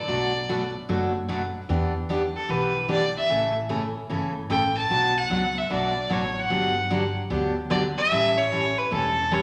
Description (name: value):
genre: country, western swing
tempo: 150 BPM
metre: 4/4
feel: swing 66% on 8ths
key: unclear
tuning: A4 = 441 Hz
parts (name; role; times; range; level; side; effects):
- clear fiddle; melody; 0.0-9.4 s; A4 to A5; -26 LUFS; equal; none
- picked steel-string acoustic guitar; accompaniment; 0.1-9.4 s; B2 to A4; -28 LUFS; equal; none
- upright bass; bass; 0.1-9.4 s; E1 to E2; -35 LUFS; equal; none
room: wet large studio reverb, RT60 1.4 s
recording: none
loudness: -25 LUFS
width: mono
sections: 0.0-9.4 A section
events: none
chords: 0.1 Bm7; 1.7 Em7; 3.3 A; 4.9 Bm; 6.5 Gmaj7; 8.1 A7